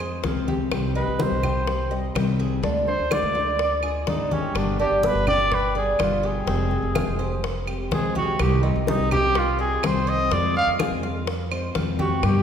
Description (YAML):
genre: latin, Cuban son and guajira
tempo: 125 BPM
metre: 4/4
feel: straight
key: unclear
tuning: A4 = 440 Hz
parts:
  - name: fingerpicked steel-string acoustic guitar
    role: accompaniment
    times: 0.0-12.4 s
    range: B2 to G4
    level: -28 LUFS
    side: left 4 dB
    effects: none
  - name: Cuban tres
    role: arpeggios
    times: 0.0-12.4 s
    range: C4 to F5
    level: -29 LUFS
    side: right 2 dB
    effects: none
  - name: upright bass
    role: bass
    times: 0.0-12.4 s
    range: F1 to G2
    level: -27 LUFS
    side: right 1 dB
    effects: none
  - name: claves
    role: percussion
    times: 0.0-12.4 s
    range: none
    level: -37 LUFS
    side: right 5 dB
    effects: none
  - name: congas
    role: percussion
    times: 0.0-12.4 s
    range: none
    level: -32 LUFS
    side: left 1 dB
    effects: none
  - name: bongos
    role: percussion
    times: 0.2-12.4 s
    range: none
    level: -32 LUFS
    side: left 3 dB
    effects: none
  - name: warm trumpet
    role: melody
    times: 1.0-12.4 s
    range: C4 to F5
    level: -25 LUFS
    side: right 1 dB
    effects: none
room: wet scoring stage reverb, RT60 2.1 s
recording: recorded in a church or concert hall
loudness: -20 LUFS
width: side -8 dB against mid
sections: 0.0-12.4 A section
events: trumpet solo 0.0-12.4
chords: 0.0 Fm; 0.7 Cm; 2.6 Ddim; 4.6 G; 6.5 Fmadd9; 8.4 Cm; 10.3 Fm